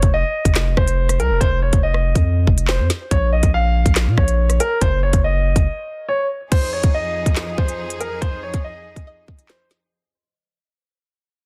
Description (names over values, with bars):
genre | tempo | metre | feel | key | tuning
hip hop, drill | 141 BPM | 4/4 | half-time | F minor | A4 = 439 Hz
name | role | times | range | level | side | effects
clear concert grand piano | melody | 0.0-9.7 s | Bb4 to F5 | -25 LUFS | equal | low-pass filter
long sustained 808-style bass | bass | 0.0-5.7 s | F1 to Bb2 | -20 LUFS | equal | none
drill drum kit | drums | 0.0-9.8 s | crash cymbal, handclaps, hi-hat, kick drum, rim click, snare drum | -20 LUFS | equal | soft clipping on snare
clear symphonic string section | sustained chords | 6.5-9.9 s | F2 to Ab4 | -33 LUFS | equal | none
string-like resonator pluck | second line | 9.1-9.5 s | Eb5 | -51 LUFS | equal | chorus, tape echo
room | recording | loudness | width
digital ambience | dense, heavily limited modern master | -18 LUFS | mono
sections
0.0-6.5 A section; 6.5-9.9 B section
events
break 5.7-6.5; fade-out 6.5-9.9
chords
0.0 F5; 3.1 Bbm; 4.8 Ebm/Gb; 6.5 Fm7